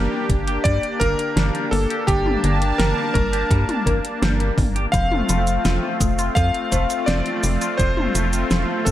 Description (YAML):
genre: synthwave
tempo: 84 BPM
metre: 4/4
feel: straight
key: unclear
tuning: A4 = 441 Hz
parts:
  - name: bright electric grand piano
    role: melody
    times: 0.0-8.9 s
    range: G4 to F5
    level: -24 LUFS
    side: equal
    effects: digital delay
  - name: warm analog pad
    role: sustained chords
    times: 0.0-8.9 s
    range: A3 to A5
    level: -25 LUFS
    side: left 1 dB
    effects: chorus, tremolo, sidechain pumping
  - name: thumb-piano-like synth pluck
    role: arpeggios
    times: 0.0-8.9 s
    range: D3 to C5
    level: -29 LUFS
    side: left 3 dB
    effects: chorus, digital delay
  - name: clean electric guitar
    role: riff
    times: 0.0-8.8 s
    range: F3 to G4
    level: -32 LUFS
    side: left 2 dB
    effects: wide subtle chorus, digital delay
  - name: tight sequencer bass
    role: bass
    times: 0.0-8.9 s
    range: F1 to G2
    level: -22 LUFS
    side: equal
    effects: sidechain pumping
  - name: electronic kick drum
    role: drums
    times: 0.3-8.9 s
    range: none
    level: -22 LUFS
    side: equal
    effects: overdrive, studio ambience
  - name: pop drum kit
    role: drums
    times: 0.3-8.9 s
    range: cabasa, hi-hat, snare drum, toms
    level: -25 LUFS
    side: equal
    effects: studio ambience, gated reverb
room: light reverb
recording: none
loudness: -18 LUFS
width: side -13 dB against mid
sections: 0.0-8.9 A section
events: none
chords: 0.0 Gm; 4.9 F